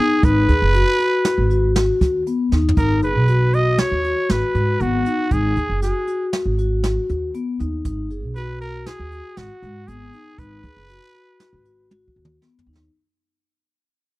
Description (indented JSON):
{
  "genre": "progressive instrumental, band music in an uneven meter",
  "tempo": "118 BPM",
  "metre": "5/4",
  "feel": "straight",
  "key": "G# minor",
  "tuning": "A4 = 439 Hz",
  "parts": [
    { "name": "growling trumpet", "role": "melody", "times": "0.0-11.9 s", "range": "F#4 to D#5", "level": "-23 LUFS", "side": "right 2 dB", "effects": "none" },
    { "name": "vibraphone with soft mallets", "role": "arpeggios", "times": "0.0-12.9 s", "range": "B3 to G#4", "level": "-22 LUFS", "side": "left 3 dB", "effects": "none" },
    { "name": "upright bass", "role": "bass", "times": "0.2-12.9 s", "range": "F#1 to G#2", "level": "-20 LUFS", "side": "right 1 dB", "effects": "none" },
    { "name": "jazz brush drum kit", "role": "drums", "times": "0.2-12.9 s", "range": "hi-hat, kick drum, snare drum, toms", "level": "-21 LUFS", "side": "right 1 dB", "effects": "none" }
  ],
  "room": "small room reverb",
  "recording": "dry, close 1970s-style studio recording",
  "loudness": "-17 LUFS",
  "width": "side -19 dB against mid",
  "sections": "0.0-12.9 A section",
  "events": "fade-out 0.0-12.9; drum fill 2.5, 11.9-12.9",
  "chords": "0.0 G#m7"
}